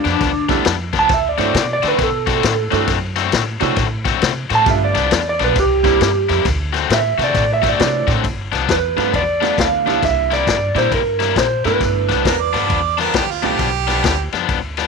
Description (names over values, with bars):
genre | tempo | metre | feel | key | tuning
electric blues shuffle | 134 BPM | 4/4 | swing 63% on 8ths | G mixolydian | A4 = 440 Hz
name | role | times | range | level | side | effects
electric guitar through a small old amp | melody | 0.0-12.5 s | D4 to A5 | -17 LUFS | right 3 dB | none
bright upright piano | accompaniment | 0.0-13.6 s | F#3 to F4 | -23 LUFS | right 16 dB | none
overdriven electric guitar | riff | 0.0-14.9 s | G2 to F#4 | -21 LUFS | left 14 dB | none
upright bass | bass | 0.0-14.9 s | G1 to D3 | -23 LUFS | right 1 dB | none
vintage drum kit | drums | 0.0-14.8 s | kick drum, ride cymbal, snare drum | -21 LUFS | left 4 dB | none
bright harmonica | second line | 12.3-14.3 s | F4 to D5 | -20 LUFS | right 17 dB | overdrive
room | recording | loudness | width
small room reverb | 1960s-style stereo with parts hard left and right | -14 LUFS | side -4 dB against mid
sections
0.0-8.2 A section; 8.2-14.9 B section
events
clean electric guitar solo 0.0-8.2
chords
0.0 G7; 1.1 D7; 4.7 G7; 5.6 C7; 6.5 D7; 8.2 G7; 10.0 C7; 11.8 G7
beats
0.21 0.66 | 1.10 1.55 2.00 2.44 | 2.89 3.33 3.78 4.22 | 4.67 5.12 5.56 6.01 | 6.45 6.90 7.34 7.79 | 8.24 8.69 9.13 9.58 | 10.03 10.47 10.92 11.37 | 11.81 12.26 12.71 13.15 | 13.60 14.05 14.49